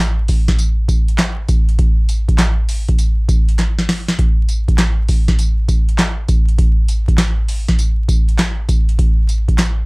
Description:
R&B; 100 BPM; 4/4; swing 66% on 16ths
booming analog drum machine; drums; 0.3-9.8 s; handclaps, hi-hat, kick drum, snare drum, tambourine; -13 LUFS; equal
group handclap; percussion; 1.2-9.8 s; -29 LUFS; right 1 dB
little or no reverb; dark, warm production, vinyl crackle; -13 LUFS; side -31 dB against mid
0.0-9.9 A section
drum fill 3.6-4.2

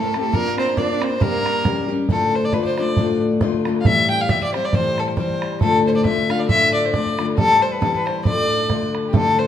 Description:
celtic folk, Celtic polka; 136 BPM; 2/4; swing 56% on 8ths; D minor; A4 = 444 Hz
warm fiddle; melody; 0.0-9.5 s; G4 to G5; -20 LUFS; left 1 dB
rich cello; second line; 0.0-1.9 s; A3 to D4; -27 LUFS; right 6 dB
picked steel-string acoustic guitar; accompaniment; 0.0-9.5 s; D2 to Bb4; -21 LUFS; left 4 dB
bodhran; percussion; 0.1-9.3 s; -23 LUFS; right 2 dB
wet recital hall reverb, RT60 1.5 s; minimal, uncompressed stereo recording; -16 LUFS; side -10 dB against mid
0.0-2.1 A section; 2.1-9.1 B section
0.3 Bb; 1.2 Gm; 1.6 Edim7; 2.1 Dm; 3.9 Am7; 5.6 Dm; 7.4 Am7; 8.3 Dm

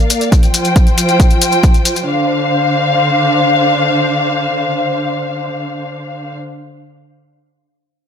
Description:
uplifting trance; 137 BPM; 4/4; straight; D minor; A4 = 440 Hz
dark studio string section; sustained chords; 0.0-6.3 s; D3 to G5; -14 LUFS; left 1 dB; sidechain pumping
maracas; percussion; 0.0-2.0 s; -19 LUFS; left 5 dB
electronic hi-hat; drums; 0.1-2.1 s; -22 LUFS; left 1 dB
electronic kick drum; drums; 0.3-1.7 s; -10 LUFS; equal
moderate lush hall reverb, RT60 1.9 s, small room reverb; -11 LUFS; side -7 dB against mid
0.0-2.1 A section; 2.1-5.6 B section
0.3 Fsus2; 2.1 Dm7

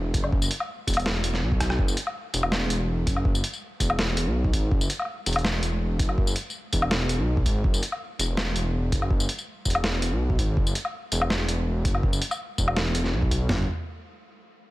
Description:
half-time drum and bass; 164 BPM; 4/4; half-time; A4 = 445 Hz
dark detuned saw bass; bass; 0.0-13.7 s; E1 to B1; -26 LUFS; equal; tube saturation
boom bap sampler-style drum kit; drums; 0.1-13.6 s; kick drum, snare drum, toms; -25 LUFS; equal
boom bap sampler-style drum kit; drums; 0.1-13.4 s; hi-hat, rim click, snare drum, tambourine, woodblock; -28 LUFS; left 1 dB
little or no reverb; -23 LUFS; side -18 dB against mid
0.0-13.5 A section; 13.5-14.7 B section
drop 0.0-13.5; drum fill 1.6

